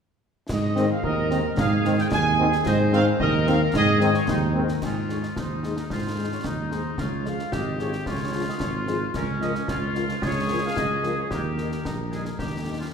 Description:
military-style march for wind band; 111 BPM; 2/4; straight; Ab major; A4 = 440 Hz
dark trumpet section; melody; 0.5-12.9 s; Ab4 to Ab5; -30 LUFS; right 2 dB
mellow tuba; bass; 0.5-12.8 s; Ab1 to Ab2; -25 LUFS; right 2 dB
concert snare drum, clash cymbals and concert bass drum; drums; 0.5-12.9 s; -31 LUFS; left 1 dB
mellow French horn section; accompaniment; 0.8-12.8 s; F3 to C5; -33 LUFS; left 4 dB
warm trombone section; sustained chords; 0.8-4.6 s; Eb3 to C4; -28 LUFS; equal
warm woodwind section; second line; 1.0-12.9 s; Db4 to C5; -29 LUFS; left 2 dB
wet concert hall reverb, RT60 2.1 s; minimal, uncompressed stereo recording; -22 LUFS; side -6 dB against mid
0.5-4.8 A section; 4.8-12.9 B section
0.5 Ab; 4.8 Ab5; 7.0 Db; 9.2 Bbm/Db; 11.3 Eb

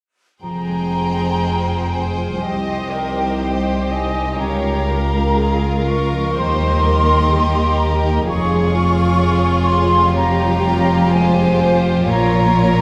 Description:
cinematic, emotional film score for orchestra; 62 BPM; 4/4; rubato; F minor; A4 = 442 Hz
dark studio violin section; melody; 0.4-12.8 s; C5 to G5; -30 LUFS; equal
clear studio violin section; second line; 0.4-12.8 s; F4 to C5; -27 LUFS; equal
flute section; second line; 0.4-12.8 s; G5 to Db6; -23 LUFS; equal
concert harp; arpeggios; 0.4-12.8 s; Bb2 to F5; -24 LUFS; equal
rich studio cello section; bass; 0.4-12.8 s; C2 to Bb2; -24 LUFS; equal
rich studio double bass section; bass; 0.4-12.8 s; F1 to Eb2; -23 LUFS; equal
warm studio viola section; accompaniment; 2.4-12.8 s; Ab3 to Eb5; -27 LUFS; equal
wet recital hall reverb, RT60 1.6 s; heard from further back in the room; -17 LUFS; mono
0.4-12.8 A section
0.4 Fmadd9; 2.4 Cm; 4.4 Bbm/Db; 6.3 Eb; 8.3 Db/F; 10.1 Fmadd9; 12.1 Bbm

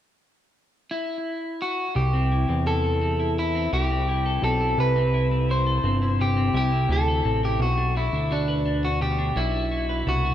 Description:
dream pop; 85 BPM; 4/4; straight; A4 = 439 Hz
electric guitar at the edge of break-up; melody; 0.9-10.3 s; D4 to C5; -25 LUFS; equal; spring reverb, analog delay
clean electric guitar; arpeggios; 2.0-10.3 s; B2 to B4; -28 LUFS; left 2 dB; lush chorus, analog delay
fat analog bass; bass; 2.0-10.3 s; G1 to E2; -24 LUFS; right 1 dB
light reverb; echo-heavy mix; -21 LUFS; side -11 dB against mid
0.0-2.0 A section; 2.0-10.3 B section
0.0 N.C.; 2.0 C6; 7.6 Bmadd11

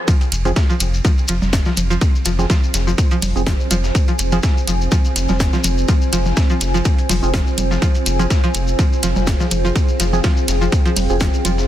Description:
minimal techno; 124 BPM; 4/4; swing 55% on 16ths; F minor; A4 = 441 Hz
string-like resonator pluck; riff; 0.1-11.5 s; F3; -25 LUFS; equal; chorus, sidechain pumping, dub echo
dusty soul sampler-style drum kit; drums; 0.1-11.7 s; hi-hat, ride cymbal, snare drum; -30 LUFS; right 2 dB; overdrive, high-pass filter on cymbals, high-pass filter on snare, high-pass filter on hats, high-pass filter on room
electronic kick drum; drums; 0.1-11.3 s; -16 LUFS; equal; overdrive
shekere; percussion; 0.1-11.7 s; -28 LUFS; left 3 dB
deep dark ambient pad; texture; 1.8-11.7 s; F4 to Ab5; -25 LUFS; equal; chorus, built-in reverb, sidechain pumping
swarming drone; texture; 0.8-11.7 s; C4; -30 LUFS; right 4 dB; built-in reverb, sidechain pumping
rubbery square bass; bass; 0.3-11.7 s; F1; -20 LUFS; equal; sidechain pumping
house drum kit; drums; 0.3-11.6 s; hi-hat, snare drum; -23 LUFS; right 1 dB; overdrive, high-pass filter on hats, high-pass filter on snare, high-pass filter on room
percussive organ stab; stabs; 0.5-11.2 s; C4 to Ab4; -28 LUFS; right 4 dB; analog chorus, ping-pong delay
congas; percussion; 0.5-11.6 s; -25 LUFS; equal
little or no reverb; dense, heavily limited modern master; -14 LUFS; side -12 dB against mid
0.1-11.7 A section
drop 0.1-11.7
0.1 Fm

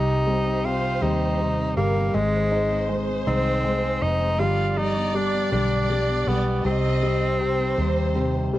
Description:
six-eight pop ballad; 53 BPM (dotted quarters); 6/8; straight; C minor; A4 = 440 Hz
bright tenor saxophone; melody; 0.0-8.5 s; Ab3 to F4; -26 LUFS; right 1 dB; cassette tape
rich studio violin section; second line; 0.0-8.6 s; Bb4 to Eb5; -31 LUFS; right 1 dB
warm concert grand piano; accompaniment; 0.0-8.6 s; C3 to Eb4; -25 LUFS; left 1 dB
picked steel-string acoustic guitar; arpeggios; 0.0-8.6 s; G2 to Ab4; -33 LUFS; left 2 dB; analog delay
vintage muted fingered electric bass; bass; 0.0-8.6 s; F1 to Eb2; -26 LUFS; equal
studio ambience; home recording on cassette; -20 LUFS; side -14 dB against mid
0.0-8.6 A section
0.0 Cm; 2.1 Ab; 4.4 G7; 6.7 Cm

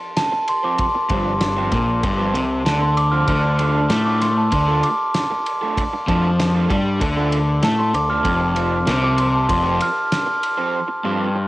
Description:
indie rock; 96 BPM; 4/4; straight; A4 = 440 Hz
glockenspiel with rubber mallets; melody; 0.2-10.4 s; A5 to F6; -21 LUFS; equal; cassette tape
cloth-damped thuddy drum kit; drums; 0.2-10.6 s; kick drum, ride cymbal, snare drum; -26 LUFS; equal; cassette tape
crunchy overdriven guitar; riff; 0.3-11.4 s; F3 to C5; -27 LUFS; right 5 dB; wide subtle chorus, cassette tape
crunchy overdriven guitar; riff; 1.1-11.5 s; F2 to A3; -20 LUFS; left 2 dB; cassette tape
growling fingered electric bass; bass; 1.1-9.8 s; F1 to A2; -24 LUFS; equal; overdrive
light reverb; home recording on cassette; -16 LUFS; side -18 dB against mid
0.0-11.5 A section
glockenspiel solo 0.0-11.5
0.0 F5; 3.3 Dm; 8.3 F5

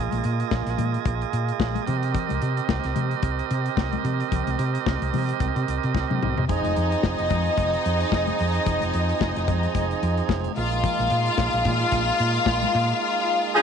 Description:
disco; 110 BPM; 4/4; swing 56% on 16ths; A4 = 438 Hz
tonewheel organ; sustained chords; 0.0-13.6 s; F3 to Eb5; -28 LUFS; right 13 dB; overdrive, wide subtle chorus
hollow-body short-scale fingered electric bass; bass; 0.0-12.9 s; F1 to C3; -26 LUFS; equal
modern studio drum kit; drums; 0.1-13.0 s; hi-hat, kick drum, snare drum, toms; -28 LUFS; left 4 dB
congas; percussion; 0.1-12.9 s; -35 LUFS; left 13 dB
clear symphonic string section; second line; 6.5-13.6 s; Eb4 to F5; -24 LUFS; left 3 dB
clear horn section; stabs; 13.6 s; F3 to Ab4; -15 LUFS; equal
moderate echo chamber reverb, RT60 2.1 s; 1960s-style stereo with parts hard left and right, nothing above 10.5 kHz; -21 LUFS; side -7 dB against mid
0.0-6.5 A section; 6.5-13.6 B section
drum fill 5.9-6.5; band accent 13.0-13.6
0.0 Bb7sus4; 1.9 Cm7; 6.5 Fm7; 10.6 Bb7(no3)

